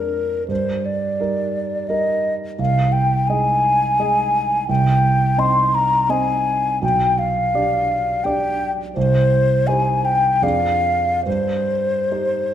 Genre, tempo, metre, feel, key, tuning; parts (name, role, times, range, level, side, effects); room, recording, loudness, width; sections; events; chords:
classical, romantic duo for flute and grand piano; 69-88 BPM; 3/4; rubato; C minor from 4.7 s; A4 = 440 Hz
mellow hollow concert flute; melody; 0.0-12.5 s; Bb4 to C6; -18 LUFS; left 2 dB
warm grand piano; accompaniment; 0.0-12.5 s; B1 to Eb5; -21 LUFS; right 3 dB
wet recital hall reverb, RT60 1.5 s; -16 LUFS; side -10 dB against mid
0.0-12.5 A section
0.0 Bb7/F; 0.5 Eb/G; 2.6 Ab/C; 4.7 Cm; 6.8 G/B; 9.0 Cm; 10.4 Ddim/F; 11.3 Cm/G